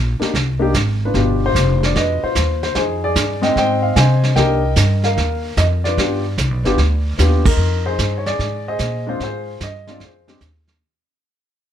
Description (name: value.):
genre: jazz piano trio.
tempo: 149 BPM.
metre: 4/4.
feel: swing 67% on 8ths.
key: unclear.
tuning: A4 = 440 Hz.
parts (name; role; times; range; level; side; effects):
upright bass; bass; 0.0-10.8 s; F1 to C3; -18 LUFS; equal; none.
warm upright piano; melody; 0.2-10.8 s; B2 to Ab5; -19 LUFS; left 2 dB; plate reverb.
vintage brush drum kit; drums; 0.2-11.1 s; brushed snare drum, crash cymbal, hi-hat, kick drum, snare drum; -21 LUFS; right 3 dB; none.
room: light reverb.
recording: none.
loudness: -15 LUFS.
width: side -10 dB against mid.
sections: 0.0-7.6 A section; 7.6-10.8 B section.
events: band accent 7.4; fade-out 7.6-10.8.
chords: 0.0 Cm7; 1.1 G7; 2.8 Fm7; 4.4 Cm7; 6.0 G7; 7.6 Fm7; 9.2 Dm7b5.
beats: 0.34 0.75 | 1.15 1.55 1.95 2.36 | 2.76 3.16 3.56 3.97 | 4.37 4.77 5.17 5.58 | 5.98 6.38 6.79 7.19 | 7.59 7.99 8.40 8.80 | 9.20 9.61 10.01 10.41.